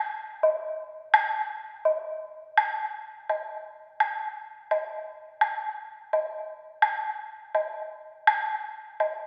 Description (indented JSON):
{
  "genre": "chinese traditional",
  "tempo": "84 BPM",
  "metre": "2/4",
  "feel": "rubato",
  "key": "none",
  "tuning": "none",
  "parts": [
    { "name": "woodblock", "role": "percussion", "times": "0.4-9.2 s", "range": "none", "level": "-28 LUFS", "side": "equal", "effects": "none" }
  ],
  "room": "wet recital hall reverb, RT60 1.7 s",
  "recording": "recorded in a church or concert hall",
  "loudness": "-29 LUFS",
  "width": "mono",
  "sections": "0.0-2.6 A section; 2.6-9.3 B section",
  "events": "none",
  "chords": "none"
}